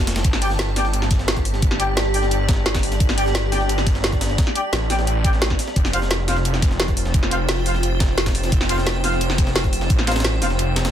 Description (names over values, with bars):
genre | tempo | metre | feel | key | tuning
dark technical drum and bass | 174 BPM | 4/4 | straight | unclear | A4 = 440 Hz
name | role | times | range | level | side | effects
wide detuned saw bass | bass | 0.0-10.9 s | F1 to A1 | -22 LUFS | equal | chorus
granular cloud pad | texture | 0.0-10.9 s | F4 to A5 | -27 LUFS | equal | built-in reverb, sidechain pumping
breakbeat sampler-style drum kit | drums | 0.1-10.9 s | hi-hat, snare drum | -29 LUFS | right 1 dB | high-pass filter on hats, high-pass filter on snare
drum and bass drum kit | drums | 0.1-10.8 s | hi-hat, snare drum | -24 LUFS | equal | soft clipping on snare
electronic kick drum | drums | 0.2-10.0 s | none | -20 LUFS | equal | none
warm brass ensemble | stabs | 0.4-10.5 s | F4 to G5 | -27 LUFS | left 1 dB | dub echo
room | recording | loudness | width
light reverb, digital ambience | dense, heavily limited modern master | -17 LUFS | side -10 dB against mid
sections
0.0-10.9 A section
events
kick drops out 10.6-10.9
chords
0.2 G5; 5.8 F